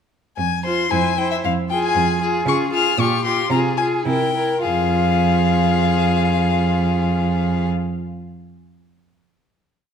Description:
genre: quick classical-period movement for string quartet.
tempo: 100-119 BPM.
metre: 2/4.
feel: rubato.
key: F minor.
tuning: A4 = 440 Hz.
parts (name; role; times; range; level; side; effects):
clear violin; melody; 0.4-7.7 s; E5 to F6; -22 LUFS; left 9 dB; none.
bright cello; bass; 0.4-7.7 s; F2 to Db3; -20 LUFS; right 4 dB; none.
clear violin; second line; 0.6-7.7 s; G4 to C5; -24 LUFS; left 3 dB; none.
clear viola; accompaniment; 0.6-7.7 s; E4 to F4; -25 LUFS; equal; none.
room: moderate recital hall reverb, RT60 1.5 s.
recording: dark, warm production.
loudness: -16 LUFS.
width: side -7 dB against mid.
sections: 0.4-4.6 theme; 4.6-6.9 final chord.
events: slowing down 1.9-4.6.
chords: 0.4 Fm; 0.9 C/F; 1.4 Fm; 2.5 Db; 3.0 Gm7b5/Bb; 3.5 Fm/C; 4.0 C7; 4.6 Fm.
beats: | 0.37 0.91 | 1.43 1.95 | 2.46 2.97 | 3.50 4.05 | 4.63 5.20 | 5.78 6.35.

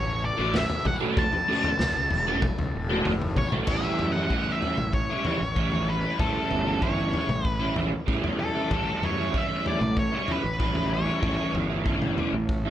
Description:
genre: psychedelic rock.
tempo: 95 BPM.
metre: 4/4.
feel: straight.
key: A mixolydian.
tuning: A4 = 440 Hz.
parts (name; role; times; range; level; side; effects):
octave-fuzz lead guitar; melody; 0.0-11.5 s; A4 to A5; -30 LUFS; equal; distortion, tape echo.
fuzz fingered electric bass; bass; 0.0-12.7 s; E1 to A2; -32 LUFS; equal; overdrive.
tanpura; drone; 0.0-10.5 s; A2 to A3; -40 LUFS; left 2 dB; none.
crunchy overdriven guitar; riff; 0.4-12.7 s; A2 to A4; -27 LUFS; right 1 dB; rotary speaker.
raw garage drum kit; drums; 0.5-12.6 s; crash cymbal, kick drum, snare drum, toms; -29 LUFS; left 1 dB; none.
room: small room ambience.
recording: none.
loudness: -23 LUFS.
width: side -12 dB against mid.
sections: 0.0-3.7 A section; 3.7-12.7 B section.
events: none.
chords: 0.0 F#m7; 3.7 A7.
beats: 0.55 | 1.17 1.80 2.43 3.06 | 3.69 4.32 4.94 5.57 | 6.20 6.83 7.46 8.09 | 8.72 9.35 9.98 10.61 | 11.24 11.87 12.49.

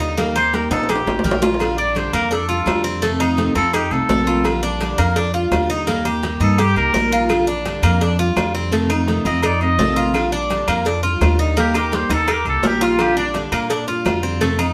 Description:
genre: latin, Cuban son and guajira.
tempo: 169 BPM.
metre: 4/4.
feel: straight.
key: Bb major.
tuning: A4 = 440 Hz.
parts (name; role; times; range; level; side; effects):
picked steel-string acoustic guitar; accompaniment; 0.0-14.7 s; C3 to G4; -26 LUFS; equal; none.
Cuban tres; arpeggios; 0.0-14.7 s; A3 to Bb4; -24 LUFS; equal; none.
upright bass; bass; 0.0-14.7 s; A1 to Bb2; -24 LUFS; equal; none.
agogo bells and timbales; percussion; 0.2-14.7 s; none; -27 LUFS; equal; none.
cowbell and bongos; percussion; 0.2-14.6 s; none; -29 LUFS; equal; none.
warm trumpet; melody; 0.4-13.3 s; D4 to Eb5; -23 LUFS; equal; none.
claves; percussion; 7.3-14.7 s; none; -32 LUFS; equal; none.
room: moderate studio reverb, RT60 0.9 s.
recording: band playing live in one room.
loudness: -18 LUFS.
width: mono.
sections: 0.0-14.7 A section.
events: trumpet solo 0.0-14.7; drum fill 0.7-1.6, 11.6-13.0.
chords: 0.2 Eb; 1.6 Bb6; 3.0 F7; 4.5 Bb6; 5.9 Eb; 7.3 Bb6; 8.7 F7; 10.1 Bb6; 11.6 Eb; 13.0 Bb6.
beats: | 0.18 0.54 0.89 1.25 | 1.61 1.96 2.32 2.67 | 3.03 3.38 3.74 4.10 | 4.45 4.81 5.17 5.52 | 5.88 6.23 6.59 6.94 | 7.30 7.66 8.01 8.37 | 8.72 9.08 9.43 9.79 | 10.14 10.50 10.86 11.21 | 11.57 11.92 12.28 12.63 | 12.99 13.34 13.70 14.05 | 14.41.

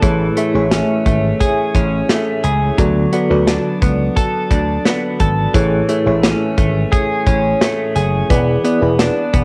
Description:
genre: 1980s-style pop.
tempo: 87 BPM.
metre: 4/4.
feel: straight.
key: A major.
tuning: A4 = 438 Hz.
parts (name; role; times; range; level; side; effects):
FM electric piano with tremolo; accompaniment; 0.0-9.4 s; A2 to E5; -22 LUFS; equal; phaser, cassette tape.
direct-recorded clean electric guitar; riff; 0.0-9.4 s; E3 to A4; -21 LUFS; equal; analog chorus, cassette tape, analog delay.
vintage slap bass; bass; 0.0-9.4 s; E1 to D2; -21 LUFS; equal; none.
modern studio drum kit; drums; 0.0-9.4 s; hi-hat, kick drum, snare drum; -19 LUFS; equal; cassette tape.
room: moderate spring reverb, RT60 2.6 s.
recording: home recording on cassette.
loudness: -16 LUFS.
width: mono.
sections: 0.0-9.4 A section.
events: none.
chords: 0.0 Amaj7; 2.8 D6; 5.5 Amaj7; 8.3 E7.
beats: | 0.03 0.71 1.41 2.10 | 2.78 3.47 4.16 4.85 | 5.54 6.23 6.92 7.61 | 8.30 8.99.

